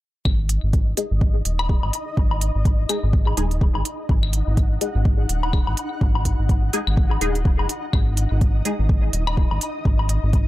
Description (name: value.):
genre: minimal techno.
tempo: 125 BPM.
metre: 4/4.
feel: swing 58% on 16ths.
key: unclear.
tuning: A4 = 439 Hz.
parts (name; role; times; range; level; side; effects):
round analog bass; bass; 0.3-10.5 s; D#1 to G#1; -21 LUFS; equal; sidechain pumping.
electronic kick drum; drums; 0.3-10.4 s; none; -19 LUFS; equal; none.
claves and woodblock; percussion; 0.3-10.1 s; none; -29 LUFS; left 4 dB; analog delay.
flickering grainy texture; texture; 0.6-10.5 s; D#4 to F#5; -32 LUFS; left 1 dB; built-in reverb, sidechain pumping.
electronic hi-hat; drums; 0.5-10.4 s; none; -27 LUFS; right 2 dB; none.
filtered dub chord stab; stabs; 1.0-8.7 s; G#3 to G#4; -28 LUFS; left 2 dB; phaser, ensemble chorus, analog delay.
room: digital ambience.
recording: echo-heavy mix.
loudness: -18 LUFS.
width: side -16 dB against mid.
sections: 0.3-10.5 A section.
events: none.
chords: 0.3 G#5.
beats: | 0.25 0.73 1.21 1.69 | 2.17 2.65 3.13 3.61 | 4.09 4.57 5.05 5.53 | 6.01 6.49 6.97 7.45 | 7.93 8.41 8.89 9.37 | 9.85 10.33.